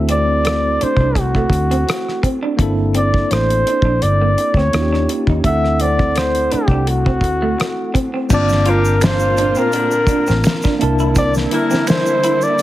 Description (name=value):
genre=R&B, neo-soul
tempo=84 BPM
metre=4/4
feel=swing 53% on 16ths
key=G dorian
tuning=A4 = 440 Hz
part: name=tine electric piano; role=accompaniment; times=0.0-12.6 s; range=A3 to A5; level=-22 LUFS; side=equal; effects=medium stereo tremolo
part: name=vintage muted fingered electric bass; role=bass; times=0.0-11.5 s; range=G1 to Eb2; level=-18 LUFS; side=equal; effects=none
part: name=breathy flugelhorn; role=melody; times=0.1-12.6 s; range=F#4 to E5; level=-18 LUFS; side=equal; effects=none
part: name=electric guitar through a small old amp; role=second line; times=0.1-12.4 s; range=A3 to F4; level=-24 LUFS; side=right 3 dB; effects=spring reverb
part: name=damped 70s drum kit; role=drums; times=0.1-12.6 s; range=crash cymbal, hi-hat, kick drum, rim click, snare drum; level=-19 LUFS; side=equal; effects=none
part: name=dark studio string section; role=sustained chords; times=8.3-12.6 s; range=Bb2 to F4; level=-25 LUFS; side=left 1 dB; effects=none
part: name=egg shaker and finger snaps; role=percussion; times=8.3-12.6 s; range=none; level=-30 LUFS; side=right 4 dB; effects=none
part: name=mellow saxophone section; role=stabs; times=8.7-12.2 s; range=D3 to G4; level=-23 LUFS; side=left 2 dB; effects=none
room=light reverb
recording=heavily compressed radio sound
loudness=-13 LUFS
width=side -14 dB against mid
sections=0.0-8.3 A section; 8.3-12.6 B section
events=none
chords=0.0 D9; 2.6 Gm69; 4.7 Eb9; 5.4 D9; 8.3 Gm9; 10.8 C13